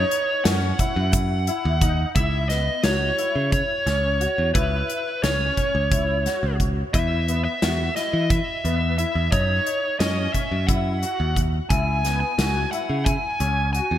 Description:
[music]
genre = progressive instrumental, band music in an uneven meter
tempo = 176 BPM (eighths)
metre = 7/8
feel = straight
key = C# minor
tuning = A4 = 442 Hz
[part]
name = dark smooth lead guitar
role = melody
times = 0.0-14.0 s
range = B4 to G#5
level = -24 LUFS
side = right 1 dB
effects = overdrive, ping-pong delay
[part]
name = bright grand piano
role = arpeggios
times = 0.0-14.0 s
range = B3 to F#4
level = -30 LUFS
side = left 4 dB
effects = ensemble chorus, ping-pong delay
[part]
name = modern bright picked electric bass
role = bass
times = 0.0-14.0 s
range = C#2 to E3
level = -23 LUFS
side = equal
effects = none
[part]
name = big rock drum kit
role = drums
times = 0.1-13.9 s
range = hi-hat, kick drum, snare drum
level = -25 LUFS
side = equal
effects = gated reverb
[part]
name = tube shaker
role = percussion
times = 0.8-1.4 s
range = none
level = -37 LUFS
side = right 12 dB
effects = none
[sound]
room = light reverb, studio reverb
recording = bright 1980s-style digital production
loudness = -20 LUFS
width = side -11 dB against mid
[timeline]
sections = 0.0-2.2 A section; 2.2-14.0 B section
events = none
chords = 0.0 F#5; 2.2 C#m; 6.9 E5; 9.3 F#5; 11.7 C#m

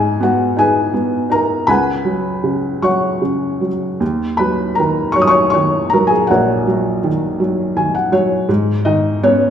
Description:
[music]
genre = classical, lyrical solo piano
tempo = 51-56 BPM (dotted quarters)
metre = 6/8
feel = rubato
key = Eb minor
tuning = A4 = 441 Hz
[part]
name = felt-muted upright piano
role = solo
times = 0.0-9.5 s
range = Bb1 to Eb6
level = -13 LUFS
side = equal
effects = none
[sound]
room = wet recital hall reverb, RT60 1.4 s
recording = recorded in a church or concert hall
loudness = -13 LUFS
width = side -8 dB against mid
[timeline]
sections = 0.0-9.5 A section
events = felt piano fill 7.4-8.5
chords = 0.0 Abm7; 1.7 Db7sus4; 4.0 Ebm7; 8.5 Abm

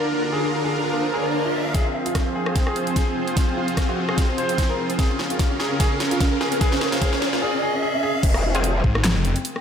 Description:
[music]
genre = heavy wobble dubstep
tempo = 148 BPM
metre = 4/4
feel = swing 55% on 16ths, half-time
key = unclear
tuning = A4 = 443 Hz
[part]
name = supersaw pad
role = sustained chords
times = 0.0-7.4 s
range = Db3 to C5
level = -27 LUFS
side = right 1 dB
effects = analog chorus, sidechain pumping, low-pass filter
[part]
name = riser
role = sound effects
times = 0.1-8.2 s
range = none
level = -30 LUFS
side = equal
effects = none
[part]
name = granular cloud pad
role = texture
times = 0.0-9.6 s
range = C4 to F5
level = -30 LUFS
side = left 1 dB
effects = built-in reverb, sidechain pumping
[part]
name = warm baby grand piano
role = melody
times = 0.1-8.2 s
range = Bb3 to C5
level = -26 LUFS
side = equal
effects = wide subtle chorus, diffuse ambient delay
[part]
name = dubstep drum kit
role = drums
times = 1.7-9.6 s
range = crash cymbal, handclaps, hi-hat, rim click, snare drum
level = -27 LUFS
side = equal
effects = overdrive, high-pass filter on snare, low-pass filter on snare, high-pass filter on hats, low-pass filter on hats, high-pass filter on cymbals, low-pass filter on cymbals, high-pass filter on room, low-pass filter on room
[part]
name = electronic kick drum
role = drums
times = 1.7-8.9 s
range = none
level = -21 LUFS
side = equal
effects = overdrive
[part]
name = growl bass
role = bass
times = 8.2-8.8 s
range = F1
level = -22 LUFS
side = equal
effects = chorus, overdrive
[part]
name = orchestra-hit-like synth stab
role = stabs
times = 8.5-8.6 s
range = C4 to Ab4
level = -28 LUFS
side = left 2 dB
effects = built-in reverb, diffuse ambient delay
[part]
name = snarling distorted saw bass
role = bass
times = 8.8-9.3 s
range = F1 to Ab1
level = -21 LUFS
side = equal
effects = distortion, overdrive
[sound]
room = wet lush hall reverb, RT60 1.9 s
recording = dreamy mix soaked in reverb, low-pass filter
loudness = -19 LUFS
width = side -8 dB against mid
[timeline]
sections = 0.0-1.7 A section; 1.7-8.2 B section; 8.2-9.6 C section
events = riser 0.1-1.7, 1.7-8.2; build-up 1.7-8.2; drum fill 1.7-7.4; drop 8.2-9.6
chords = 0.0 Bb/D; 1.7 Fm; 5.0 Db6; 8.2 Fm

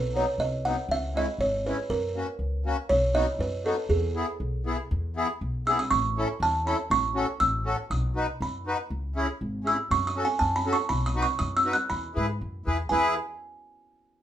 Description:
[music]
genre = alpine folk, alpine dance band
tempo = 120 BPM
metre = 2/4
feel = straight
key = E major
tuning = A4 = 440 Hz
[part]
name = buzzing kalimba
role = melody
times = 0.0-13.1 s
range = G#4 to F#6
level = -26 LUFS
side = right 2 dB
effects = none
[part]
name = upright bass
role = bass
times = 0.0-13.1 s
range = G#1 to G#2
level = -30 LUFS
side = equal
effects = none
[part]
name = accordion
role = accompaniment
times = 0.1-13.1 s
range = F#3 to B4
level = -28 LUFS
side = left 2 dB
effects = light tremolo tuning
[sound]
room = moderate studio reverb, RT60 0.6 s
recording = minimal, uncompressed stereo recording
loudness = -24 LUFS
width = side -11 dB against mid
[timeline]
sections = 0.0-4.9 A section; 4.9-12.9 B section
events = none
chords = 0.0 B; 0.9 C#m; 1.9 F#; 2.9 B; 3.9 E; 5.9 A; 6.9 F#m/A; 7.9 B; 8.9 C#m; 9.9 F#m; 10.9 B; 11.9 E

